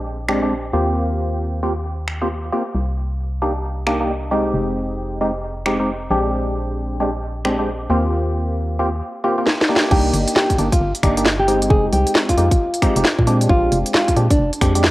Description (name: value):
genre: UK garage, two-step garage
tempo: 134 BPM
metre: 4/4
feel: swing 62% on 16ths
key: C minor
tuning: A4 = 440 Hz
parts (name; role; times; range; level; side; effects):
- organ-like FM bass; bass; 0.0-14.9 s; F1 to Bb2; -22 LUFS; equal; sidechain pumping
- percussive organ stab; stabs; 0.3-14.9 s; Ab3 to G4; -21 LUFS; equal; analog chorus, cassette tape, tape echo
- garage drum kit; drums; 0.3-14.9 s; crash cymbal, finger snaps, hi-hat, snare drum; -20 LUFS; equal; cassette tape
- nylon-string guitar; melody; 9.9-14.5 s; D4 to Ab4; -20 LUFS; equal; cassette tape, tape echo
- electronic kick drum; drums; 9.9-14.7 s; none; -17 LUFS; equal; cassette tape
room: moderate spring reverb, RT60 1.7 s, digital ambience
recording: home recording on cassette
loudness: -16 LUFS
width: side -17 dB against mid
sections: 0.0-9.9 A section; 9.9-14.9 B section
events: filter sweep on synth stab 0.0-9.9; drum fill 9.5-9.9; drop 9.9-14.9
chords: 0.0 Bb13; 0.7 Eb69; 2.7 Cm9; 4.5 Fm9; 6.1 Bb13; 7.9 Eb69; 9.9 Cm9; 11.7 Fm9; 13.3 Bb13